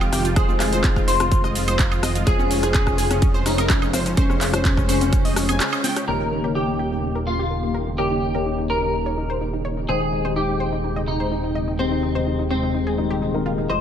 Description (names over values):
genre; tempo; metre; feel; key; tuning
progressive house; 126 BPM; 4/4; straight; unclear; A4 = 440 Hz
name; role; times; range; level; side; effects
clean electric guitar; melody; 0.0-13.8 s; C4 to C5; -26 LUFS; left 1 dB; ensemble chorus, ping-pong delay
soft synth bell; second line; 0.0-13.8 s; C4 to C5; -32 LUFS; left 2 dB; none
supersaw pad; sustained chords; 0.0-13.8 s; C3 to G5; -29 LUFS; right 2 dB; phaser, sidechain pumping, low-pass filter
analog pluck; arpeggios; 0.0-13.8 s; Bb3 to Ab5; -28 LUFS; equal; chorus, sidechain pumping, ping-pong delay
dark concert grand piano; stabs; 0.0-13.8 s; Eb3 to G5; -28 LUFS; left 6 dB; sidechain pumping, low-pass filter, ping-pong delay
fat analog bass; bass; 0.0-13.8 s; Eb1 to F1; -26 LUFS; equal; sidechain pumping
big-room dance drum kit; drums; 0.0-6.1 s; handclaps, hi-hat, shaker, woodblock; -26 LUFS; right 2 dB; overdrive, sidechain pumping on hats, low-pass filter on hats, sidechain pumping on perc, low-pass filter on perc, low-pass filter on snare
electronic rim click, cowbell and congas; percussion; 0.1-6.1 s; none; -29 LUFS; left 3 dB; sidechain pumping on snare, sidechain pumping on perc
electronic kick drum; drums; 0.4-5.2 s; none; -20 LUFS; equal; overdrive
room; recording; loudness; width
light reverb, digital ambience; none; -18 LUFS; side -9 dB against mid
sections
0.0-6.1 A section; 6.1-13.8 B section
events
drop 0.0-6.1; break 5.6-6.1; band accent 5.6; filter sweep on synth pluck 6.1-13.8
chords
0.0 Fm7; 2.3 Dbmaj7/F; 6.1 Eb7; 9.9 Abmaj7/Eb